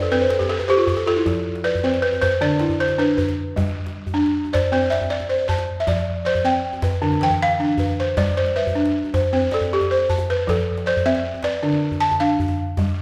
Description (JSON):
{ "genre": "west african traditional, West African string and xylophone music", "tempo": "104 BPM (dotted quarters)", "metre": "12/8", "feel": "straight", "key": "F lydian", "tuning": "A4 = 440 Hz", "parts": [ { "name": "balafon", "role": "arpeggios", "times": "0.0-13.0 s", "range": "D3 to A5", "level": "-24 LUFS", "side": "equal", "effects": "none" }, { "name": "djembe", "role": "percussion", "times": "0.0-13.0 s", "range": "none", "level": "-28 LUFS", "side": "equal", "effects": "none" }, { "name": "balafon", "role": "melody", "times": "0.1-13.0 s", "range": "G4 to A5", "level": "-24 LUFS", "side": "equal", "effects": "none" } ], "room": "wet recital hall reverb, RT60 1.4 s", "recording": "recorded in a church or concert hall", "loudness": "-20 LUFS", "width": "mono", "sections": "0.0-13.0 A section", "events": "balafon fill 0.0-1.3; balafon solo 0.0-13.0", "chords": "0.1 N.C.; 1.3 F; 2.4 Cmaj9/D (rootless); 3.6 G; 4.7 C69; 5.9 F; 7.0 Dm; 8.2 G; 9.3 C5; 10.5 F; 11.6 Dm" }